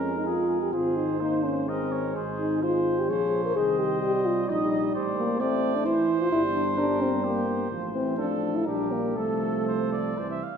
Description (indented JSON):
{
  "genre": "classical, brass quintet",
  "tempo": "117-132 BPM",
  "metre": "3/4",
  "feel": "rubato",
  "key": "F major from 5.0 s",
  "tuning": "A4 = 439 Hz",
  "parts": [
    { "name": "mellow trumpet", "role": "melody", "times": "0.0-10.4 s", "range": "G4 to Eb5", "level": "-36 LUFS", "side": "left 5 dB", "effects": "none" },
    { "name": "warm trumpet", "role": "second line", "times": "0.0-10.6 s", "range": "G4 to F5", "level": "-33 LUFS", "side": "right 6 dB", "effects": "none" },
    { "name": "clear trombone", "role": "accompaniment", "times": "0.0-10.4 s", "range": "Eb3 to C4", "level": "-33 LUFS", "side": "right 4 dB", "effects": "none" },
    { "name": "mellow French horn", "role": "accompaniment", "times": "0.0-10.2 s", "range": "A3 to Bb4", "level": "-26 LUFS", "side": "left 2 dB", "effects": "none" },
    { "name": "mellow bass trombone", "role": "bass", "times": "0.0-10.4 s", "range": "G1 to F2", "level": "-34 LUFS", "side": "right 2 dB", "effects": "none" }
  ],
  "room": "wet scoring stage reverb, RT60 1.6 s",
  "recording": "minimal, uncompressed stereo recording",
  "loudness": "-24 LUFS",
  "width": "side -7 dB against mid",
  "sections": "0.0-10.6 A section",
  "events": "none",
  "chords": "0.0 Fm; 0.7 Ab69; 2.2 Ab; 3.6 Bb13sus4; 5.0 Am; 6.3 C5/G; 7.7 F/A; 8.7 Gm/Bb; 9.2 F/C"
}